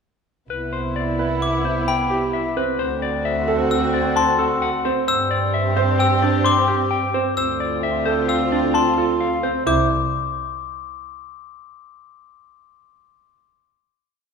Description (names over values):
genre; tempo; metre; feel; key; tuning
classical, minimalist pattern music; 131 BPM; 5/4; straight; C major; A4 = 440 Hz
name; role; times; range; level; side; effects
clean electric guitar; melody; 0.5-9.9 s; G4 to C6; -23 LUFS; left 6 dB; none
mellow soprano saxophone; second line; 0.5-9.4 s; C4 to E4; -28 LUFS; right 4 dB; none
warm symphonic violin section; sustained chords; 0.5-9.4 s; B3 to G4; -26 LUFS; left 2 dB; none
clear double bass; bass; 0.5-9.9 s; C2 to G2; -25 LUFS; right 3 dB; none
warm concert grand piano; arpeggios; 1.2-9.9 s; C4 to C5; -25 LUFS; right 7 dB; none
glockenspiel with brass mallets; arpeggios; 1.4-9.9 s; B5 to E6; -25 LUFS; left 3 dB; none
room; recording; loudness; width
wet scoring stage reverb, RT60 1.9 s; minimal, uncompressed stereo recording; -18 LUFS; side -5 dB against mid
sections
0.5-9.7 A section; 9.7-12.0 final chord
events
none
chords
0.5 Cmaj7; 2.8 D7; 5.1 Gsus4; 7.4 Dm7; 9.7 C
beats
| 0.51 0.96 1.42 1.88 2.34 | 2.80 3.25 3.71 4.17 4.63 | 5.09 5.54 6.00 6.46 6.92 | 7.38 7.83 8.29 8.75 9.21 | 9.67